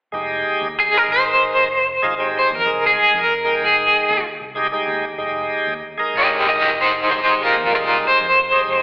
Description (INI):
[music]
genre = blues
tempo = 95 BPM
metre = 4/4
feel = swing 54% on 16ths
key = F minor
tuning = A4 = 442 Hz
[part]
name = bright tonewheel organ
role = accompaniment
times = 0.1-8.8 s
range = Ab3 to G5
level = -21 LUFS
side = right 1 dB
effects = slow rotary speaker, overdrive, plate reverb, slapback echo
[part]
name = vintage muted fingered electric bass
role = bass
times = 0.1-8.8 s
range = F1 to F2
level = -41 LUFS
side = equal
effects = none
[part]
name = crunchy overdriven guitar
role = melody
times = 0.8-8.8 s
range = Eb4 to Eb5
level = -14 LUFS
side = equal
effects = tremolo, slapback echo
[sound]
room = moderate club reverb, RT60 0.5 s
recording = live gig heard through the venue's PA, recital hall reverb, telephone sound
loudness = -15 LUFS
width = side -25 dB against mid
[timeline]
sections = 0.1-8.8 A section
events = none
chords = 0.1 Fm9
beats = | 0.13 0.76 1.40 2.03 | 2.66 3.29 3.93 4.56 | 5.19 5.82 6.46 7.09 | 7.72 8.35